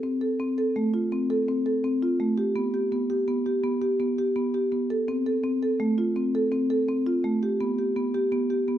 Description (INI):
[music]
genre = contemporary instrumental, contemporary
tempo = 167 BPM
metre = 7/4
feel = straight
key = unclear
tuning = A4 = 437 Hz
[part]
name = marimba with soft mallets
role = solo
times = 0.0-8.8 s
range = A3 to A4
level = -23 LUFS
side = equal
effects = none
[sound]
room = moderate recital hall reverb, RT60 1.4 s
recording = none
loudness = -23 LUFS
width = side -11 dB against mid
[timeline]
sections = 0.0-8.8 A section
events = none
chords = none